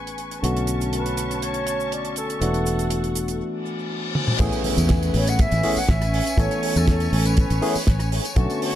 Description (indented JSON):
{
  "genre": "nu-disco, nu disco",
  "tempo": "121 BPM",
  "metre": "4/4",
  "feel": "straight",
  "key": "A major",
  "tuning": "A4 = 440 Hz",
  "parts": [
    { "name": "barky tine electric piano", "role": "accompaniment", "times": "0.0-8.8 s", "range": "D3 to A4", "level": "-26 LUFS", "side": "left 1 dB", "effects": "tape echo" },
    { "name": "rich symphonic string section", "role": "sustained chords", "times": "0.0-8.8 s", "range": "D3 to C#6", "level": "-31 LUFS", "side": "left 1 dB", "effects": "vintage 12-bit sampler grit, sidechain pumping" },
    { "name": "fingered electric bass", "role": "bass", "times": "0.0-8.5 s", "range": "E1 to E2", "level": "-23 LUFS", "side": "equal", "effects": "none" },
    { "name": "damped 70s drum kit", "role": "drums", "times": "0.1-8.7 s", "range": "crash cymbal, hi-hat, rim click, snare drum, tambourine, toms", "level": "-28 LUFS", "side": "right 1 dB", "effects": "none" },
    { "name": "cabasa", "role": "percussion", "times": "0.4-3.4 s", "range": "none", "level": "-35 LUFS", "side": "right 5 dB", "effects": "tape echo" },
    { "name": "mellow concert flute", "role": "melody", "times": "0.9-8.8 s", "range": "A4 to F#5", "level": "-28 LUFS", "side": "right 1 dB", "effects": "tape echo" },
    { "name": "reverse cymbal and impact", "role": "sound effects", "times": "3.6-6.4 s", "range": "none", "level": "-30 LUFS", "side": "left 1 dB", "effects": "none" },
    { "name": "kick drum", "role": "drums", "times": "4.4-8.5 s", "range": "none", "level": "-18 LUFS", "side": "equal", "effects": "none" }
  ],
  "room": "small room ambience",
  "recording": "echo-heavy mix",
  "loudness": "-20 LUFS",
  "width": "side -12 dB against mid",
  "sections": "0.0-4.4 A section; 4.4-8.8 B section",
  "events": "break 3.4-4.4; reverse cymbal 3.6-4.4; drum fill 4.2; drop 4.4-8.8; impact 4.4-6.4",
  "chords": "0.4 Bm9; 2.4 E9sus4; 4.4 Amaj9"
}